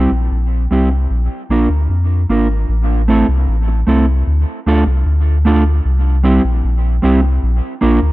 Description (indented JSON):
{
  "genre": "dub reggae",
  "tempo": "76 BPM",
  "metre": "4/4",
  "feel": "straight",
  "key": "A phrygian",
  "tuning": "A4 = 440 Hz",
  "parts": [
    { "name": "mellow electric guitar", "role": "accompaniment", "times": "0.0-8.0 s", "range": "G3 to Bb4", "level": "-16 LUFS", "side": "right 2 dB", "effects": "low-pass filter, dub echo" },
    { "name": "warm sub bass", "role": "bass", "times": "0.0-8.1 s", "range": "G#1 to F2", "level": "-14 LUFS", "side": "equal", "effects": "none" }
  ],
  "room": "light reverb, digital ambience",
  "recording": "dark, warm production",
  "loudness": "-12 LUFS",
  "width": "side -18 dB against mid",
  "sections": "0.0-2.7 A section; 2.7-8.1 B section",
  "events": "none",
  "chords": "0.0 C; 1.1 Bb; 2.7 Am; 4.3 Dm; 5.8 C; 7.4 Bb"
}